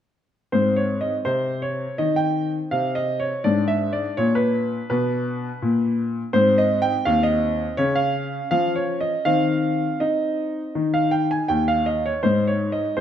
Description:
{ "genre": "classical-period piano sonatina", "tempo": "82 BPM", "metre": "4/4", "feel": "straight", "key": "Ab major", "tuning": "A4 = 440 Hz", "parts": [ { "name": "bright baby grand piano", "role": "solo", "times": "0.5-13.0 s", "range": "Eb2 to Ab5", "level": "-19 LUFS", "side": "equal", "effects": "none" } ], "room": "wet recital hall reverb, RT60 1.4 s", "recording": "none", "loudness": "-19 LUFS", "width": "side -9 dB against mid", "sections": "0.5-13.0 A section", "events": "none", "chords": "0.5 Ab; 3.4 Abdim; 6.3 Ab; 7.8 Db; 9.3 Cmadd11/Eb; 10.8 N.C.; 12.2 Ab5", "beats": "| 0.52 1.26 1.99 2.72 | 3.45 4.18 4.90 5.62 | 6.34 7.06 7.78 8.52 | 9.26 10.01 10.75 11.49 | 12.23 12.97" }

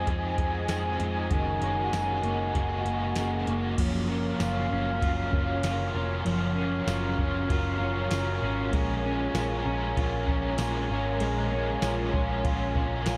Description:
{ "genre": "dream pop", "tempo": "97 BPM", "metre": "4/4", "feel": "straight", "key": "Gb lydian", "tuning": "A4 = 440 Hz", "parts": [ { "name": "overdriven electric guitar", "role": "accompaniment", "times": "0.0-13.2 s", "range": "Gb2 to Bb4", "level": "-35 LUFS", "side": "equal", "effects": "tremolo, ensemble chorus, dub echo" }, { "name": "dark brass ensemble", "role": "sustained chords", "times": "0.0-13.2 s", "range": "Db4 to Ab5", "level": "-35 LUFS", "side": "equal", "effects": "none" }, { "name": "clean electric guitar", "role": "arpeggios", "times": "0.0-13.2 s", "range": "Eb3 to Ab4", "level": "-35 LUFS", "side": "equal", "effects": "lush chorus, dub echo" }, { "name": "vintage muted picked electric bass", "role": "bass", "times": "0.0-13.2 s", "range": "F1 to F2", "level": "-34 LUFS", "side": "equal", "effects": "none" }, { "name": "soft vintage rhythm box", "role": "drums", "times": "0.1-13.2 s", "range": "crash cymbal, hi-hat, kick drum, ride cymbal, snare drum, tambourine", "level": "-34 LUFS", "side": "equal", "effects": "dub echo" } ], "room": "moderate spring reverb, RT60 2.3 s", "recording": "echo-heavy mix", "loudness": "-28 LUFS", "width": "mono", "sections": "0.0-3.8 A section; 3.8-13.2 B section", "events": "none", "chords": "0.0 Fm7; 1.3 Gb69; 3.8 Gbmaj7; 8.7 Bbm7", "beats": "0.07 0.69 | 1.31 1.93 2.55 3.17 | 3.78 4.40 5.02 5.64 | 6.26 6.88 7.50 8.11 | 8.73 9.35 9.97 10.59 | 11.21 11.83 12.44 13.06" }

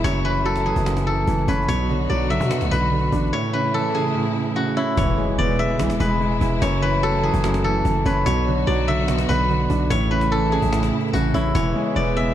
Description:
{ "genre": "hip hop, trap", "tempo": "146 BPM", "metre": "4/4", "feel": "half-time", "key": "unclear", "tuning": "A4 = 441 Hz", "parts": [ { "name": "steel-string zither", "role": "melody", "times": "0.0-12.3 s", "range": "E4 to E5", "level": "-23 LUFS", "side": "left 2 dB", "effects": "low-pass filter, digital delay" }, { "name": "dark concert grand piano", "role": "accompaniment", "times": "0.0-12.3 s", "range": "F#2 to E4", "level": "-23 LUFS", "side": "right 3 dB", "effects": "low-pass filter" }, { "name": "dark studio string section", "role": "sustained chords", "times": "0.0-12.3 s", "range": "C#3 to F#4", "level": "-29 LUFS", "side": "left 2 dB", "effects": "none" }, { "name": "growling 808-style bass", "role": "bass", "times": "0.0-12.3 s", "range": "E1 to B2", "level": "-23 LUFS", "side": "left 1 dB", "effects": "none" }, { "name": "cajon", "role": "drums", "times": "0.0-12.2 s", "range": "none", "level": "-31 LUFS", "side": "left 1 dB", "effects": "none" }, { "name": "impact", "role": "sound effects", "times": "5.0-6.6 s", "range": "none", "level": "-30 LUFS", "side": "left 1 dB", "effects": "none" } ], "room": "small room ambience", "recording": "none", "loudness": "-18 LUFS", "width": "side -11 dB against mid", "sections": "0.0-5.0 A section; 5.0-12.3 B section", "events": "drums muted 3.3-5.0; impact 5.0-6.6", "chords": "0.0 F#m7; 1.7 Bm; 3.3 A; 5.0 E6; 6.6 F#m7; 8.3 Bm; 9.9 A; 11.5 E6", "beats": "| 0.04 0.45 0.86 1.27 | 1.69 2.10 2.51 2.92 | 3.33 3.74 4.15 4.56 | 4.97 5.38 5.79 6.21 | 6.62 7.03 7.44 7.85 | 8.26 8.67 9.08 9.49 | 9.90 10.32 10.73 11.14 | 11.55 11.96" }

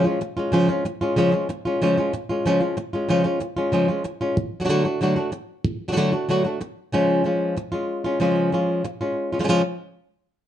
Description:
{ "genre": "flamenco", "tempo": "188 BPM", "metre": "4/4", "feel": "straight", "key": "unclear", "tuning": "A4 = 440 Hz", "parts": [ { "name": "flamenco guitar", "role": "solo", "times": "0.0-9.6 s", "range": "C#3 to F#4", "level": "-20 LUFS", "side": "equal", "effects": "none" } ], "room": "moderate studio reverb, RT60 0.8 s", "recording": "dark, warm production, nothing above 10.8 kHz", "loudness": "-20 LUFS", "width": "side -11 dB against mid", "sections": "0.0-9.5 A section", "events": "none", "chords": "0.0 C#; 4.4 D; 6.9 C#", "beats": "0.21 | 0.53 0.85 1.17 1.49 | 1.81 2.13 2.45 2.77 | 3.09 3.41 3.73 4.05 | 4.37 4.69 5.01 5.33 | 5.65 5.97 6.29 6.61 | 6.93 7.25 7.57 7.88 | 8.20 8.52 8.84 9.16 | 9.48" }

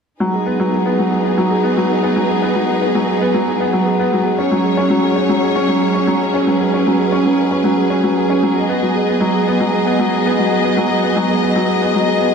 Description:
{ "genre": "electronica", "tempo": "115 BPM", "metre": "4/4", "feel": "straight", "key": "G# minor", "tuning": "A4 = 440 Hz", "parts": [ { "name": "warm studio string section", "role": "sustained chords", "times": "0.2-12.3 s", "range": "F#3 to D#5", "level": "-19 LUFS", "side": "equal", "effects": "none" }, { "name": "clear upright piano", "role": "riff", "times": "0.2-12.3 s", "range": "F#3 to C#4", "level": "-15 LUFS", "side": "equal", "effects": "low-pass filter, tape echo" } ], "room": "wet recital hall reverb, RT60 1.6 s", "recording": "none", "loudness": "-13 LUFS", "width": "side -6 dB against mid", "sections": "0.2-12.3 A section", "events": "none", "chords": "0.2 G#m7; 4.4 F#sus2; 8.6 G#m7", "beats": "| 0.21 0.73 1.25 1.77 | 2.29 2.82 3.34 3.86 | 4.38 4.90 5.42 5.95 | 6.47 6.99 7.51 8.03 | 8.55 9.08 9.60 10.12 | 10.64 11.16 11.69 12.21" }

